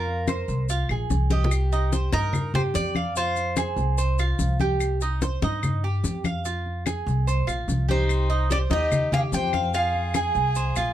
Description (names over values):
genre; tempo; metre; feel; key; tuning
latin, Cuban son and guajira; 146 BPM; 4/4; straight; C minor; A4 = 440 Hz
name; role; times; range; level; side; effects
Cuban tres; melody; 0.0-4.6, 7.9-10.9 s; G4 to G5; -28 LUFS; left 1 dB; plate reverb
Cuban tres; arpeggios; 0.0-10.9 s; Eb4 to F5; -28 LUFS; right 4 dB; none
upright bass; bass; 0.0-10.9 s; Bb1 to G2; -25 LUFS; equal; none
congas; percussion; 0.1-10.9 s; none; -28 LUFS; left 2 dB; none
claves; percussion; 0.3-10.9 s; none; -34 LUFS; left 7 dB; none
maracas; percussion; 0.3-10.9 s; none; -38 LUFS; left 6 dB; none
warm violin; second line; 7.9-10.9 s; Eb4 to C5; -32 LUFS; left 4 dB; none
room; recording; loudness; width
light reverb; close, detailed microphones; -22 LUFS; side -12 dB against mid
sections
0.0-1.5 A section; 1.5-10.9 B section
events
Cuban tres solo 0.0-1.5; drum fill 1.3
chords
0.0 Fm; 1.5 Cm; 3.2 Fm; 4.8 Cm; 6.5 Fm; 8.1 Cm; 9.7 Fm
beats
0.28 0.69 1.10 | 1.51 1.93 2.34 2.75 | 3.16 3.57 3.98 4.39 | 4.80 5.22 5.63 6.04 | 6.45 6.86 7.27 7.68 | 8.09 8.50 8.91 9.33 | 9.74 10.15 10.56